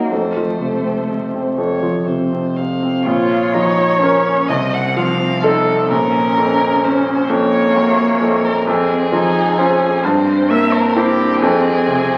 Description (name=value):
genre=classical, slow romantic movement for piano trio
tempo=40-44 BPM (dotted quarters)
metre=6/8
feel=rubato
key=Bb minor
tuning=A4 = 440 Hz
part: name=dark violin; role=melody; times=0.0-12.2 s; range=G4 to Gb5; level=-21 LUFS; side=equal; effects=none
part: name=warm cello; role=second line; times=0.0-12.2 s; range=A3 to F4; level=-23 LUFS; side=equal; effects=none
part: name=warm concert grand piano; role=accompaniment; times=0.0-12.2 s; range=Bb1 to C5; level=-18 LUFS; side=equal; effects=none
room=wet recital hall reverb, RT60 1.4 s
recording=very old 78 rpm record, vinyl crackle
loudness=-16 LUFS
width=mono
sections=0.0-3.1 A section; 3.1-12.2 B section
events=none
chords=0.1 F; 3.1 Bbm; 4.5 F7/C; 5.9 Bbm; 8.7 Fm; 10.0 C7/G; 11.4 Fm